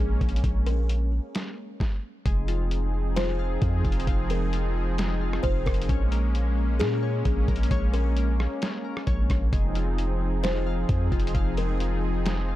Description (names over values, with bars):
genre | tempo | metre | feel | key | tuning
hip hop, atmospheric cloud-rap | 132 BPM | 4/4 | half-time | F minor | A4 = 440 Hz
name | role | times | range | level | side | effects
buzzing kalimba | melody | 0.0-11.8 s | Ab4 to C5 | -34 LUFS | left 2 dB | digital delay
warm analog pad | sustained chords | 0.0-12.6 s | F3 to Ab4 | -32 LUFS | equal | chorus, sidechain pumping
long sustained 808-style bass | bass | 0.0-12.6 s | F1 to Bb2 | -25 LUFS | equal | none
lo-fi sampler-style drum kit | drums | 0.2-12.4 s | hi-hat, kick drum, rim click, snare drum | -27 LUFS | equal | none
glassy digital keys | arpeggios | 2.3-12.6 s | Ab3 to F5 | -37 LUFS | left 7 dB | chorus, digital delay
room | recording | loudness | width
little or no reverb | dark, warm production | -23 LUFS | side -15 dB against mid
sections
0.0-2.3 A section; 2.3-12.6 B section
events
none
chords
0.0 Bbm7; 2.3 Fm7; 5.9 Bbm7; 9.5 Fm7